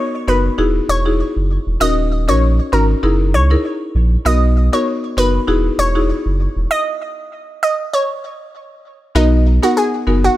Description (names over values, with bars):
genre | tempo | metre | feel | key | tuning
afrobeats | 98 BPM | 4/4 | swing 55% on 16ths | B major | A4 = 439 Hz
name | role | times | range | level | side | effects
analog pluck | melody | 0.0-10.4 s | D#4 to D#5 | -19 LUFS | right 1 dB | chorus, tape echo
buzzing marimba with medium hard mallets | accompaniment | 0.0-10.4 s | B3 to A#4 | -19 LUFS | left 2 dB | none
warm sub bass | bass | 0.3-10.3 s | D#1 to C#2 | -15 LUFS | equal | none
room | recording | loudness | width
studio ambience | none | -13 LUFS | side -15 dB against mid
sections
0.0-9.2 A section; 9.2-10.4 B section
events
stop 6.7-9.2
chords
0.0 Bmaj7; 0.6 Emaj9; 1.8 D#m7; 3.0 F#13; 4.3 Bmaj7; 5.5 Emaj9; 6.7 N.C.; 9.2 Bmaj7